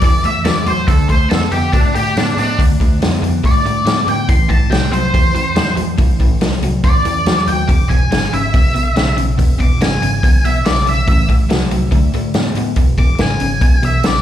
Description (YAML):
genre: blues rock power trio and southern rock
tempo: 141 BPM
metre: 4/4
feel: straight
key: A harmonic minor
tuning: A4 = 437 Hz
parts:
  - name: octave-fuzz lead guitar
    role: melody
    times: 0.0-14.2 s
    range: D4 to D6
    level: -19 LUFS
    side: left 1 dB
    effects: wah, distortion, slapback echo, analog delay
  - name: overdriven electric guitar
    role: riff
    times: 0.0-14.2 s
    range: E2 to B3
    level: -20 LUFS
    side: equal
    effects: slapback echo
  - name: vintage muted fingered electric bass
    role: bass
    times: 0.0-14.2 s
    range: E1 to A2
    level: -19 LUFS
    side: equal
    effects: none
  - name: vintage drum kit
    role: drums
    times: 0.0-14.1 s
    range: hi-hat, kick drum, snare drum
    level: -15 LUFS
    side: equal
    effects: none
room: light reverb, small room ambience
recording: live gig heard through the venue's PA, club reverb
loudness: -12 LUFS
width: side -11 dB against mid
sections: 0.0-14.2 A section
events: none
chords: 0.0 Am; 0.9 Dm; 4.3 Am; 7.7 E; 11.1 Am; 11.9 D5; 12.8 E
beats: 0.02 0.45 | 0.88 1.30 1.73 2.16 | 2.58 3.01 3.44 3.86 | 4.29 4.71 5.14 5.57 | 5.99 6.42 6.84 7.26 | 7.69 8.11 8.54 8.96 | 9.38 9.81 10.23 10.65 | 11.08 11.50 11.92 12.35 | 12.77 13.19 13.61 14.04